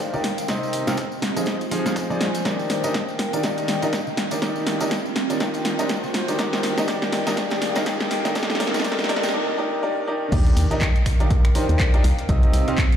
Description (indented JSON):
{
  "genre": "piano house",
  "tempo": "122 BPM",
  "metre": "4/4",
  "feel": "swing 58% on 16ths",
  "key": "Eb major",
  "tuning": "A4 = 442 Hz",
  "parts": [
    { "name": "clear baby grand piano", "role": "riff", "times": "0.0-12.8 s", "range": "C3 to F5", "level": "-25 LUFS", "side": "equal", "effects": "sidechain pumping, low-pass filter, dub echo" },
    { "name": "tambourine and congas", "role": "percussion", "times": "0.0-9.3 s", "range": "none", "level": "-38 LUFS", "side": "equal", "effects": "none" },
    { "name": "riser and impact", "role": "sound effects", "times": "0.0-12.3 s", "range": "none", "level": "-32 LUFS", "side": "equal", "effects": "none" },
    { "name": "warbly tape-like pad", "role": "texture", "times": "0.0-13.0 s", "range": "Eb3 to Ab5", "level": "-30 LUFS", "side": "right 2 dB", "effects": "chorus, built-in reverb, sidechain pumping" },
    { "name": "dusty soul sampler-style drum kit", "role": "drums", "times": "0.2-12.9 s", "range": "hi-hat, snare drum", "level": "-41 LUFS", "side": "left 1 dB", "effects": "none" },
    { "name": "punchy analog drum machine", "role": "drums", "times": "0.2-13.0 s", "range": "crash cymbal, finger snaps, handclaps, hi-hat, snare drum", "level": "-26 LUFS", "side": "equal", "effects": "none" },
    { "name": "electronic kick drum", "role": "drums", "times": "0.5-12.9 s", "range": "none", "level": "-21 LUFS", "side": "equal", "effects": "high-pass filter on kick, high-pass filter on room" },
    { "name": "organ-like FM bass", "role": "bass", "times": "10.3-12.6 s", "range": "C2 to Eb2", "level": "-19 LUFS", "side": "equal", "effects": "sidechain pumping" }
  ],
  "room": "moderate lush hall reverb, RT60 2.6 s",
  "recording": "played on a big sound system in a bare room, large studio reverb, high-pass filter",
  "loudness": "-20 LUFS",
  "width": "side -9 dB against mid",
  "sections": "0.0-10.3 A section; 10.3-13.0 B section",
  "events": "build-up 0.0-10.3; drum fill 0.0-9.3; riser 0.0-9.3; drop 10.3-13.0; impact 10.3-12.3",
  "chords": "0.2 Cm; 1.2 Fm7; 2.5 Ebmaj7; 12.0 Cm"
}